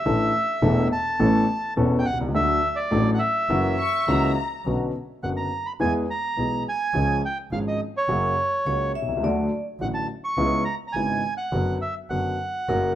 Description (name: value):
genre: tango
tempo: 105 BPM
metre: 4/4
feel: rubato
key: B harmonic minor from 4.7 s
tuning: A4 = 440 Hz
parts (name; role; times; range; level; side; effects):
- bandoneon; melody; 0.0-12.9 s; C#5 to C#6; -25 LUFS; right 1 dB; none
- warm grand piano; accompaniment; 0.1-12.9 s; E1 to A4; -24 LUFS; left 1 dB; none
- clear double bass; bass; 0.1-12.9 s; E1 to E2; -30 LUFS; right 1 dB; none
- warm studio violin section; second line; 3.8-4.7 s; A#5 to C#6; -29 LUFS; left 6 dB; none
- vibraphone with hard mallets; second line; 8.7-13.0 s; A#4 to E5; -29 LUFS; left 2 dB; plate reverb
room: wet small room reverb, RT60 0.6 s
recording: rough home demo mix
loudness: -21 LUFS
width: side -12 dB against mid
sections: 0.0-4.7 A section; 4.7-13.0 B section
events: none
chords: 0.1 Asus4; 1.2 Aadd9; 2.3 D; 3.5 F#7; 4.7 Bmadd9; 5.8 E; 7.0 C#; 8.1 F#; 9.2 D; 10.4 C#m7; 11.5 Bm/F#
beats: | 0.06 0.63 1.20 1.77 | 2.35 2.92 3.50 4.08 | 4.66 5.23 5.81 6.38 | 6.96 7.53 8.10 8.67 | 9.24 9.81 10.38 10.96 | 11.53 12.11 12.68